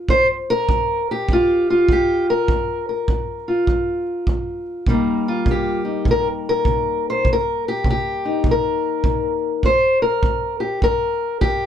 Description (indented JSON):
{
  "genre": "acoustic country blues, solo or duo",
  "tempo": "101 BPM",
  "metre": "4/4",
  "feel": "swing 64% on 8ths",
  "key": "G minor",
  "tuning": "A4 = 440 Hz",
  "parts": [
    { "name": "fingerpicked steel-string acoustic guitar", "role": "melody", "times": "0.0-11.7 s", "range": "G2 to C5", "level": "-18 LUFS", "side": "left 1 dB", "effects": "slapback echo" },
    { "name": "kick drum", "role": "drums", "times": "0.1-11.6 s", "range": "none", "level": "-22 LUFS", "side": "right 1 dB", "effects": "none" }
  ],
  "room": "moderate booth ambience, RT60 0.2 s",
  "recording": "none",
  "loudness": "-17 LUFS",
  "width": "side -9 dB against mid",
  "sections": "0.0-11.7 A section",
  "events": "none",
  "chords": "0.0 Gm7; 4.9 Cm7; 9.6 Gm"
}